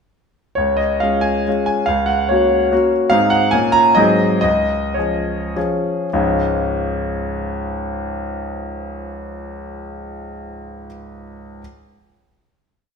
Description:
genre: classical, romantic triple-time dance for piano with dotted rhythms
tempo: 97-152 BPM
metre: 3/4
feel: rubato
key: Db major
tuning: A4 = 439 Hz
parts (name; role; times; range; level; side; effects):
- clear concert grand piano; solo; 0.6-11.6 s; Db2 to Bb5; -16 LUFS; equal; none
room: wet stone room reverb, RT60 1.3 s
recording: minimal, uncompressed stereo recording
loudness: -15 LUFS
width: side -5 dB against mid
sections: 0.6-6.1 A section; 6.1-9.6 final chord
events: slowing down 2.5-6.1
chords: 0.6 Db; 1.9 Gb/Db; 3.1 Ab; 3.5 Bbm; 4.0 Ab7; 4.4 Db

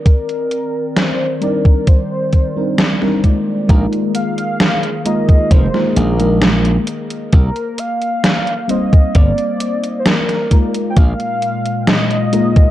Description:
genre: vaporwave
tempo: 66 BPM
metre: 4/4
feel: straight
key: C minor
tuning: A4 = 440 Hz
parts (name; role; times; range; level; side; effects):
- warm velvety synth lead; melody; 0.0-12.7 s; Bb4 to G5; -21 LUFS; equal; chorus, tape echo
- warbly tape-like pad; sustained chords; 0.0-12.7 s; Bb2 to D5; -24 LUFS; left 1 dB; chorus, built-in reverb
- electronic kick drum; drums; 0.1-12.7 s; none; -9 LUFS; equal; none
- gated 80s digital drum machine; drums; 0.1-12.7 s; hi-hat, snare drum; -17 LUFS; equal; gated reverb, gated reverb snare, overdrive
- mellow FM electric piano; accompaniment; 1.4-12.7 s; G3 to D5; -19 LUFS; equal; phaser, lush chorus
- glassy slap bass; bass; 3.7-11.1 s; F1 to C2; -15 LUFS; equal; tube saturation
room: little or no reverb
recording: dark, warm production, cassette tape, low-pass filter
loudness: -12 LUFS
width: side -13 dB against mid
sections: 0.0-3.7 A section; 3.7-12.7 B section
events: filter sweep 0.0-3.7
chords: 0.0 Cm9; 3.7 Bb7sus4; 6.9 Cm9; 11.0 Bb7sus4

